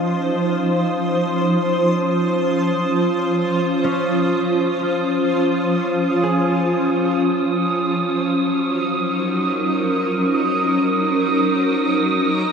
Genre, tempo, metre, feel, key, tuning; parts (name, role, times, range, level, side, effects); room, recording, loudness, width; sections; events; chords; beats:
ambient; free time; A4 = 440 Hz
granular cloud pad; sustained chords; 0.0-12.5 s; F3 to C5; -18 LUFS; equal; built-in reverb
concert harp; arpeggios; 0.0-9.6 s; Db4 to F5; -31 LUFS; left 1 dB; diffuse ambient delay
wind-like tuned noise texture; texture; 0.0-12.5 s; Eb6; -25 LUFS; right 4 dB; built-in reverb
wet cathedral reverb, RT60 6.4 s; -17 LUFS; side -6 dB against mid
0.0-12.5 A section
fade-in on synth texture 0.0-12.5
0.0 Dbmaj9; 7.9 Ebm7
free time